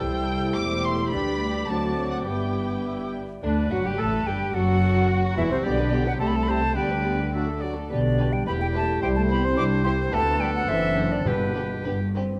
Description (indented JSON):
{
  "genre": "quick classical-period movement for symphony orchestra",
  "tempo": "107 BPM",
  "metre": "2/4",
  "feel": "rubato",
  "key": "G major",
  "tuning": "A4 = 440 Hz",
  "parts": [
    { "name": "muted chamber violin section", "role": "melody", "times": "0.0-12.2 s", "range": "C4 to D6", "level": "-37 LUFS", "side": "equal", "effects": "none" },
    { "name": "bright concert flute", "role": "second line", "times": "0.0-11.8 s", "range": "B4 to E6", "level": "-32 LUFS", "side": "equal", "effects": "none" },
    { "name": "mellow clarinet", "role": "second line", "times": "0.0-12.2 s", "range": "B3 to E5", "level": "-38 LUFS", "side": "equal", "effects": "none" },
    { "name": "muted chamber violin section", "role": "second line", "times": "0.0-12.2 s", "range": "C4 to D5", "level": "-40 LUFS", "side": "equal", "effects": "none" },
    { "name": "dark bassoon", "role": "accompaniment", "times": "0.0-12.4 s", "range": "C3 to C4", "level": "-34 LUFS", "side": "equal", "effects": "none" },
    { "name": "muted studio viola section", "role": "accompaniment", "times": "0.0-12.2 s", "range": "G3 to A4", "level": "-37 LUFS", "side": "equal", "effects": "none" },
    { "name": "warm French horn section", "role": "sustained chords", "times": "0.0-11.9 s", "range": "B2 to E4", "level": "-32 LUFS", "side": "equal", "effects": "none" },
    { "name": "muted chamber double bass section", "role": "bass", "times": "0.0-12.4 s", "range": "E1 to D2", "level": "-31 LUFS", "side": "equal", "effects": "none" },
    { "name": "muted symphonic cello section", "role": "bass", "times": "0.0-12.4 s", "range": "C2 to D3", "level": "-31 LUFS", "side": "equal", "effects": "none" },
    { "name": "bright oboe", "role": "second line", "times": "3.4-12.2 s", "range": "F#4 to E5", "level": "-36 LUFS", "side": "equal", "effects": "none" },
    { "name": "timpani", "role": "percussion", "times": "11.3-12.1 s", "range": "G2", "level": "-34 LUFS", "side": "equal", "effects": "none" }
  ],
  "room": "moderate scoring stage reverb, RT60 1.7 s",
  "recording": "none",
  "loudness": "-24 LUFS",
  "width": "mono",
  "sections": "0.0-3.4 A section; 3.4-12.4 B section",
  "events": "none",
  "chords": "0.0 C; 1.1 G/D; 1.7 D7; 2.3 G; 4.6 F#dim; 5.7 G/B; 6.2 Am7/C; 6.8 G/D; 7.3 D; 7.9 G/B; 8.5 Em; 9.0 C; 10.1 G/D; 10.7 D7/F#; 11.3 G",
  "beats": "| 0.02 0.57 | 1.12 1.69 | 2.27 2.85 | 3.44 4.00 | 4.55 5.10 | 5.65 6.20 | 6.77 7.34 | 7.91 8.47 | 9.03 9.58 | 10.13 10.69 | 11.27 11.86"
}